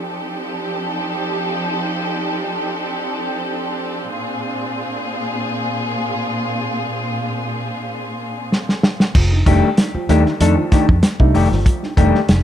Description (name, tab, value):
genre	funk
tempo	95 BPM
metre	4/4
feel	straight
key	F mixolydian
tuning	A4 = 440 Hz
part	warm studio string section	sustained chords	0.0-9.1 s	Bb2 to A4	-21 LUFS	equal	none
part	warm soul drum kit	drums	8.5-12.4 s	crash cymbal, hi-hat, kick drum, snare drum	-16 LUFS	equal	none
part	dark upright piano	stabs	9.2-12.4 s	F3 to Eb4	-20 LUFS	right 4 dB	none
part	vintage muted fingered electric bass	bass	9.2-12.4 s	F1 to F2	-16 LUFS	equal	none
part	mellow electric guitar	accompaniment	9.5-12.2 s	Eb3 to A4	-18 LUFS	left 5 dB	spring reverb
room	light reverb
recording	dark, warm production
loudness	-16 LUFS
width	side -10 dB against mid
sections	0.0-9.2 A section; 9.2-12.4 B section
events	drum fill 8.5-9.2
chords	0.0 F13; 4.1 Bb9; 9.2 F13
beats	0.35 0.97 | 1.60 2.23 2.86 3.49 | 4.12 4.75 5.38 6.01 | 6.64 7.27 7.90 8.52 | 9.15 9.78 10.41 11.03 | 11.66 12.29